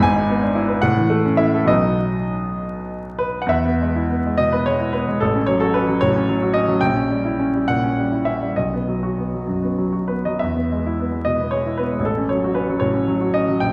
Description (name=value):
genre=classical, romantic character piece for solo piano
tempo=62-79 BPM (dotted quarters)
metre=6/8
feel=rubato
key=E major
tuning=A4 = 440 Hz
part: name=clear grand piano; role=solo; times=0.0-13.7 s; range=G#1 to G#5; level=-20 LUFS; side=equal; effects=none
room=wet scoring stage reverb, RT60 1.8 s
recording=heard from further back in the room, vinyl crackle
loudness=-20 LUFS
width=mono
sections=0.0-3.5 A section; 3.5-13.7 B section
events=none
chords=0.0 E7/G#; 0.8 A; 1.7 B; 3.5 E; 5.2 F#m/A; 6.8 A#dim7; 8.6 B; 10.4 E; 12.0 F#m/A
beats=| 0.02 0.82 | 1.70 2.61 | 3.51 4.39 | 5.22 6.03 | 6.83 7.67 | 8.56 9.47 | 10.40 11.26 | 12.04 12.81 | 13.61